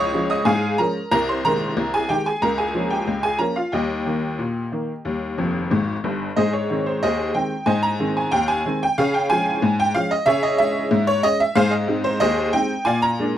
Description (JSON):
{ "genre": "ragtime piano", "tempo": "92 BPM", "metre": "2/4", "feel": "straight", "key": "Ab major", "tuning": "A4 = 443 Hz", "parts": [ { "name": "honky-tonk upright piano", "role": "solo", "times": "0.0-13.4 s", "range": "F1 to Eb6", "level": "-18 LUFS", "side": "equal", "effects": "none" } ], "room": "light reverb", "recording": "dry, close 1970s-style studio recording", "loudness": "-18 LUFS", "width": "side -11 dB against mid", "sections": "0.0-6.4 A section; 6.4-13.4 B section", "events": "honky-tonk piano fill 5.4-6.4", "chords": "0.0 Db; 1.1 Ab/C; 2.4 Bbm/Db; 3.7 Eb; 6.4 Ab; 9.0 Db; 10.3 Db5; 11.6 Ab; 12.9 Bb7" }